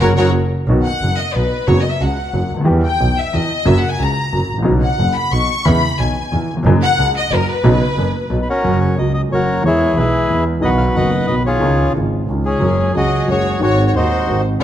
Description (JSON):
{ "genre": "tango", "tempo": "181 BPM", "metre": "3/4", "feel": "rubato", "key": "B major, F# major from 8.6 s", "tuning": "A4 = 439 Hz", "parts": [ { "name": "bandoneon", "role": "melody", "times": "0.0-0.3, 8.4-14.6 s", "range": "C#4 to F#5", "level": "-18 LUFS", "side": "left 1 dB", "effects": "none" }, { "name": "clear studio violin section", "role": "second line", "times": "0.0-8.3, 12.4-14.6 s", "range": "G#4 to C#6", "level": "-20 LUFS", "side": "left 3 dB", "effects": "none" }, { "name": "warm concert grand piano", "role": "accompaniment", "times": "0.0-14.6 s", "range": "D#1 to G#4", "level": "-17 LUFS", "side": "equal", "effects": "none" }, { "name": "clear double bass", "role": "bass", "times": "0.0-14.6 s", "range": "F#1 to E2", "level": "-19 LUFS", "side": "right 1 dB", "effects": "none" } ], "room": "moderate recital hall reverb, RT60 1.7 s", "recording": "dark, warm production", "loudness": "-13 LUFS", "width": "side -11 dB against mid", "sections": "0.7-8.6 A section; 8.6-14.6 B section", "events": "band accent 0.0-0.7; violin section solo 0.7-8.6", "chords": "0.0 F#; 0.7 B; 1.7 F#sus4; 2.7 Em; 3.7 F#; 4.7 Badd9; 5.7 E6; 6.7 F#6; 7.6 Badd9; 8.6 F#; 9.6 E; 10.6 B; 11.6 C#add9; 12.6 F#sus2; 13.6 G#7", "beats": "0.02 0.35 | 0.69 1.02 1.35 | 1.68 2.01 2.34 | 2.67 3.00 3.34 | 3.67 4.00 4.33 | 4.67 5.00 5.33 | 5.66 5.99 6.32 | 6.65 6.98 7.31 | 7.64 7.97 8.31 | 8.64 8.97 9.31 | 9.64 9.97 10.30 | 10.63 10.96 11.29 | 11.62 11.95 12.29 | 12.62 12.95 13.28 | 13.61 13.94 14.27 | 14.60" }